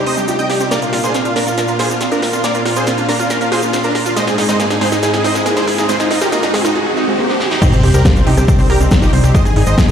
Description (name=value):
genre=uplifting trance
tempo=139 BPM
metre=4/4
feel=straight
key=C minor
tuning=A4 = 440 Hz
part: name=big supersaw lead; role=melody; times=0.0-9.9 s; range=C4 to G5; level=-18 LUFS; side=equal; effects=sidechain pumping, low-pass filter, ping-pong delay
part: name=lush unison pad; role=sustained chords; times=0.0-9.9 s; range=Ab2 to F4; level=-21 LUFS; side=equal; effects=chorus, sidechain pumping
part: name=wide unison pluck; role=arpeggios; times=0.0-9.9 s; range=G3 to C5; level=-20 LUFS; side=right 2 dB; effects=sidechain pumping, ping-pong delay
part: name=riser, swell and sub drop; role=sound effects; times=0.0-9.3 s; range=none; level=-21 LUFS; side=equal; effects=none
part: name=big-room dance drum kit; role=drums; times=0.1-9.9 s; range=crash cymbal, hi-hat, snare drum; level=-21 LUFS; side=equal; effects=high-pass filter on snare, studio reverb, high-pass filter on hats, high-pass filter on cymbals
part: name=tube shaker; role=percussion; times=0.2-9.9 s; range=none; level=-30 LUFS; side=left 1 dB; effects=none
part: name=electronic kick drum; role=drums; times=7.6-9.9 s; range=none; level=-13 LUFS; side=equal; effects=overdrive, studio reverb
part: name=plucky analog bass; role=bass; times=7.7-9.9 s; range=Ab1 to C2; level=-13 LUFS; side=equal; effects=sidechain pumping
room=moderate lush hall reverb, RT60 1.7 s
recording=played on a big sound system in a bare room, stone room reverb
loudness=-12 LUFS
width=side -8 dB against mid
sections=0.0-7.6 A section; 7.6-9.9 B section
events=build-up 0.0-7.6; drum fill 0.0-6.8, 7.3-7.6; riser 0.0-7.6; swell 6.8-7.6; drop 7.6-9.9; impact 7.6-9.3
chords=0.0 Cmadd9; 0.7 Bb; 4.2 Ab; 7.6 Cmadd9; 9.3 Ab